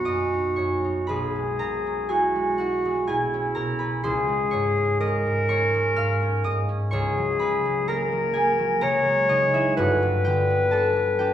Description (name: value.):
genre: classical, impressionist duo for clarinet and harp.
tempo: 63 BPM.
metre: 3/4.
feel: rubato.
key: unclear.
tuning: A4 = 436 Hz.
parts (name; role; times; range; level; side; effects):
clear clarinet; melody; 0.0-11.3 s; E4 to C#5; -23 LUFS; left 1 dB; none.
concert harp; accompaniment; 0.0-11.3 s; G1 to E#6; -24 LUFS; right 1 dB; none.
room: wet recital hall reverb, RT60 1.3 s.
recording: recorded in a church or concert hall.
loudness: -21 LUFS.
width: side -10 dB against mid.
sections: 0.0-11.3 A section.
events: none.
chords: 0.0 Bmaj7; 1.1 E69/B; 4.0 C#maj7; 6.9 F#69/C#; 9.8 Gmaj7.